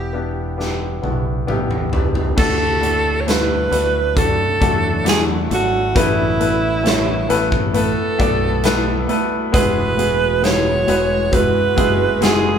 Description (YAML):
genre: pop ballad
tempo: 67 BPM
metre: 4/4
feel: straight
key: unclear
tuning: A4 = 440 Hz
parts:
  - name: bright alto saxophone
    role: melody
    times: 0.0-12.6 s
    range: E4 to C#5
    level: -19 LUFS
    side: right 3 dB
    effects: none
  - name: warm baby grand piano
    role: accompaniment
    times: 0.0-12.6 s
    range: A2 to F#5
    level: -21 LUFS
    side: left 3 dB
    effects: none
  - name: fingered electric bass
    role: bass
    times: 0.0-12.6 s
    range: E1 to E2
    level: -24 LUFS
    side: equal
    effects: none
  - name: huge arena drum kit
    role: drums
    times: 0.6-12.4 s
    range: crash cymbal, hi-hat, kick drum, snare drum, toms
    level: -20 LUFS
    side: equal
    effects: none
  - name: shimmering ambient pad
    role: sustained chords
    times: 3.6-12.6 s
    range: F#3 to B4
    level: -27 LUFS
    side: right 2 dB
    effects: chorus, built-in reverb
room: moderate large studio reverb, RT60 1.3 s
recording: band playing live in one room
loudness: -15 LUFS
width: side -8 dB against mid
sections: 0.0-2.4 A section; 2.4-12.6 B section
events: drum fill 0.6-2.4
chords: 0.0 Em7; 2.4 Dadd9; 6.0 Asus2; 9.5 Eadd9